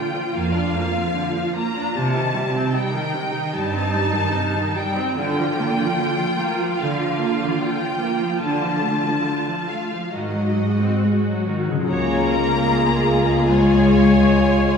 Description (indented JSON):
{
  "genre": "cinematic",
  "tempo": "74 BPM",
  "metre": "4/4",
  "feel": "rubato",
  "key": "Bb major",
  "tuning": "A4 = 437 Hz",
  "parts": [
    { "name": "rich symphonic violin section", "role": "melody", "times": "0.0-14.8 s", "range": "Eb5 to Bb5", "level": "-26 LUFS", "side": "left 4 dB", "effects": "none" },
    { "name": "clear symphonic viola section", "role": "accompaniment", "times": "0.0-14.8 s", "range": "C3 to Db5", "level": "-23 LUFS", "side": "right 2 dB", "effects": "none" },
    { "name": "rich studio cello section", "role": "bass", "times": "0.4-14.8 s", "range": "F2 to Bb3", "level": "-22 LUFS", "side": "left 1 dB", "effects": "none" },
    { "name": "concert harp", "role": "arpeggios", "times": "11.7-14.8 s", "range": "Db3 to Ab4", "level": "-26 LUFS", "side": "left 3 dB", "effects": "none" },
    { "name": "warm symphonic violin section", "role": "second line", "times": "11.9-14.8 s", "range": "F4 to Ab4", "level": "-25 LUFS", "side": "left 2 dB", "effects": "none" },
    { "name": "mellow French horn section", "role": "sustained chords", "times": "11.9-14.8 s", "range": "Ab3 to F4", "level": "-22 LUFS", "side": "left 1 dB", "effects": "none" },
    { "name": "rich symphonic double bass section", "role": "bass", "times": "11.9-14.8 s", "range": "Db2", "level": "-22 LUFS", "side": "right 3 dB", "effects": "none" }
  ],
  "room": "wet concert hall reverb, RT60 2.1 s",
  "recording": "heard from further back in the room",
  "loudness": "-18 LUFS",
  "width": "side -6 dB against mid",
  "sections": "0.0-11.9 A section; 11.9-14.8 A section",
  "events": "none",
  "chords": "0.0 Bb; 2.0 Cm; 5.2 Bb/D; 8.4 Dm; 10.1 Ab7; 11.9 Db"
}